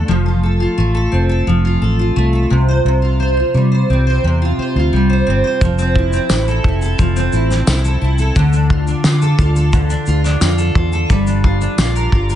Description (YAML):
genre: acoustic pop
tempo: 87 BPM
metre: 4/4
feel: straight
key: F major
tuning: A4 = 439 Hz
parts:
  - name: fingerpicked steel-string acoustic guitar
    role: accompaniment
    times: 0.0-12.4 s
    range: C3 to C5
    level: -16 LUFS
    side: equal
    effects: double-tracked left and right
  - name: vintage muted fingered electric bass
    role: bass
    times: 0.0-12.4 s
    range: F1 to D3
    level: -16 LUFS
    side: equal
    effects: none
  - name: cloth-damped thuddy drum kit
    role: drums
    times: 5.6-12.4 s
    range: kick drum, shaker, snare drum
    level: -17 LUFS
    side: equal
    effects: none
  - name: tambourine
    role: percussion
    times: 6.3-11.9 s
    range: none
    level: -26 LUFS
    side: left 8 dB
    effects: none
room: light reverb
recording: nothing above 10.3 kHz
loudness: -12 LUFS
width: side -11 dB against mid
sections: 0.0-5.6 A section; 5.6-12.4 B section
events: none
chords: 0.1 F; 2.5 Csus4; 5.6 Fmaj7; 8.4 Dm; 11.1 Gm7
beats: | 0.09 0.78 1.47 2.16 | 2.85 3.54 4.23 4.92 | 5.61 6.30 6.99 7.67 | 8.36 9.04 9.73 10.41 | 11.10 11.78